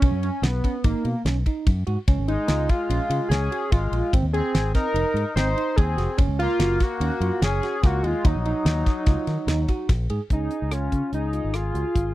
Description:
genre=progressive instrumental, band music in an uneven meter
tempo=146 BPM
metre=5/4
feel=straight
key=unclear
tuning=A4 = 440 Hz
part: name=pulse-width lead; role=melody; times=0.0-12.1 s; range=Bb3 to C5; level=-26 LUFS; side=equal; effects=chorus
part: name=tine electric piano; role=arpeggios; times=0.0-12.1 s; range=C4 to Ab4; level=-32 LUFS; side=right 7 dB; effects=none
part: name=fingered electric bass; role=bass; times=0.0-12.1 s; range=F1 to Eb3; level=-25 LUFS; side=equal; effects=none
part: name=damped 70s drum kit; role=drums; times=0.0-12.1 s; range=hi-hat, kick drum, ride cymbal, rim click, snare drum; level=-21 LUFS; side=equal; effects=none
part: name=warm flugelhorn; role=second line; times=2.3-12.1 s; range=Gb3 to Ab4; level=-31 LUFS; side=left 5 dB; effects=none
room=little or no reverb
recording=dry, close 1970s-style studio recording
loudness=-20 LUFS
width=side -16 dB against mid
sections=0.0-10.3 A section; 10.3-12.1 B section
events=none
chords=0.0 Badd9; 2.1 Db; 4.1 Abadd9; 6.2 Gb; 8.2 Ebm; 10.3 Db

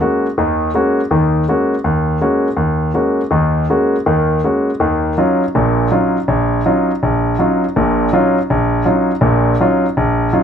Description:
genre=jazz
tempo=163 BPM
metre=4/4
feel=swing 65% on 8ths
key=Eb minor from 4.8 s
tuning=A4 = 440 Hz
part: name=warm concert grand piano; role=solo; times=0.0-10.4 s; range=Bb1 to Gb4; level=-13 LUFS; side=equal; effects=none
room=moderate studio ambience, RT60 0.5 s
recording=none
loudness=-13 LUFS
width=side -8 dB against mid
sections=0.0-4.8 A section; 4.8-10.4 B section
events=none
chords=0.0 Ab9sus4; 4.8 Ebm9

